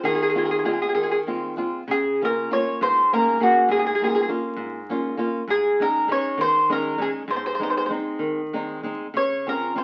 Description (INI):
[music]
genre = italian folk, Italian serenade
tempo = 66 BPM (dotted quarters)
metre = 6/8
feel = rubato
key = Db major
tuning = A4 = 437 Hz
[part]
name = mandolin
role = melody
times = 0.0-9.8 s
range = Gb4 to Db5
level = -23 LUFS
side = equal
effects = none
[part]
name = flamenco guitar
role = accompaniment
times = 0.0-9.8 s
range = Ab2 to F5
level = -28 LUFS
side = equal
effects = none
[sound]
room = wet studio reverb, RT60 0.7 s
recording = very old 78 rpm record, vinyl crackle, nothing above 7.8 kHz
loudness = -23 LUFS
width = mono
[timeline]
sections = 0.0-1.9 A section; 1.9-9.8 B section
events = none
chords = 0.0 Ab6; 1.9 Db6; 5.5 Absus4; 7.3 Ab; 9.1 Dbmaj7